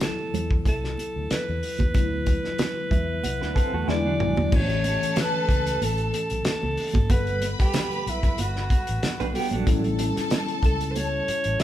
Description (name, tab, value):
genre	lush 1970s-style soul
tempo	93 BPM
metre	4/4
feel	swing 54% on 16ths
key	unclear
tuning	A4 = 439 Hz
part	breathy alto saxophone	melody	0.0-11.6 s	E4 to E5	-29 LUFS	equal	none
part	mellow tine electric piano	accompaniment	0.0-11.6 s	C3 to A5	-31 LUFS	left 3 dB	medium stereo tremolo
part	warm soul drum kit	drums	0.0-11.6 s	crash cymbal, hi-hat, kick drum, snare drum, toms	-25 LUFS	equal	none
part	congas	percussion	0.0-11.6 s	none	-34 LUFS	right 4 dB	none
part	vintage muted fingered electric bass	bass	0.3-11.6 s	G1 to E2	-30 LUFS	equal	none
part	electric guitar through a small old amp	riff	3.4-4.5, 9.2-9.8 s	F#3 to B4	-30 LUFS	right 6 dB	tremolo
part	warm studio string section	second line	4.5-11.6 s	A4 to B5	-32 LUFS	equal	none
room	moderate large studio reverb, RT60 1.2 s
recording	band playing live in one room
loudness	-22 LUFS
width	side -12 dB against mid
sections	0.0-4.5 A section; 4.5-11.6 B section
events	tine electric piano fill 2.6-4.5; drum fill 3.9-4.5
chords	0.0 D13; 3.9 E7; 4.5 A7; 7.1 Gmaj9; 9.7 A7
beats	0.01 0.66 1.30 | 1.95 2.59 3.23 3.88 | 4.52 5.17 5.81 6.45 | 7.09 7.74 8.38 9.03 | 9.67 10.31 10.95 11.60